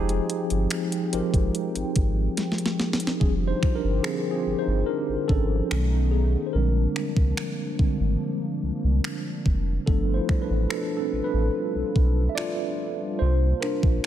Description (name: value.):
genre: contemporary R&B.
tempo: 72 BPM.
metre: 4/4.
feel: straight.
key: unclear.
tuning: A4 = 440 Hz.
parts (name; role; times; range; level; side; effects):
tine electric piano; accompaniment; 0.0-14.1 s; D3 to E5; -27 LUFS; equal; medium stereo tremolo.
hollow soft pad; sustained chords; 0.0-14.1 s; C3 to G5; -33 LUFS; equal; chorus.
saturated sub bass; bass; 0.0-14.0 s; F1 to C2; -24 LUFS; equal; none.
crisp 8-bit digital drum machine; drums; 0.1-14.1 s; finger snaps, hi-hat, kick drum, snare drum; -25 LUFS; equal; overdrive.
room: digital ambience.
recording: none.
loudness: -22 LUFS.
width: side -11 dB against mid.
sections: 0.0-3.2 A section; 3.2-14.1 B section.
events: drum fill 2.4-3.2; tine electric piano solo 3.2-14.1.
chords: 0.0 Fm9; 3.2 Fm69; 5.7 B9; 6.5 Bb13; 9.9 G9; 13.2 C9sus4.